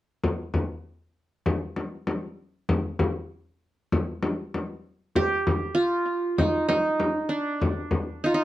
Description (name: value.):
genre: Arabic maqam ensemble.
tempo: 98 BPM.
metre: 4/4.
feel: straight.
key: unclear.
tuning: A4 = 439 Hz.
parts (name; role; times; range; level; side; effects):
frame drum; percussion; 0.2-8.1 s; none; -26 LUFS; left 2 dB; none.
qanun; melody; 5.2-8.4 s; D4 to G4; -24 LUFS; right 2 dB; tape echo.
room: moderate studio reverb, RT60 0.6 s.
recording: dark, warm production.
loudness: -24 LUFS.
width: side -14 dB against mid.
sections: 0.2-5.1 A section; 5.1-8.4 B section.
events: none.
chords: none.